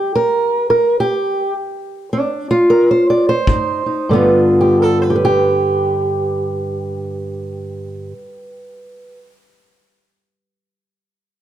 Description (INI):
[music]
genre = acoustic country blues, solo or duo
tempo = 95-114 BPM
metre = 4/4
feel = swing 60% on 8ths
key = G mixolydian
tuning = A4 = 440 Hz
[part]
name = fingerpicked old ladder-braced acoustic guitar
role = melody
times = 0.0-9.2 s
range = G2 to D5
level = -14 LUFS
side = right 1 dB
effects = plate reverb
[part]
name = kick drum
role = drums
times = 3.5-3.6 s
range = none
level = -18 LUFS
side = left 1 dB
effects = none
[sound]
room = wet small room reverb, RT60 0.6 s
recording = none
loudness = -13 LUFS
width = side -11 dB against mid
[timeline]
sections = 0.0-4.1 A section; 4.1-9.1 B section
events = slowing down 0.0-4.1; stop 0.0-3.5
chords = 0.0 N.C.; 3.5 Ab; 4.1 G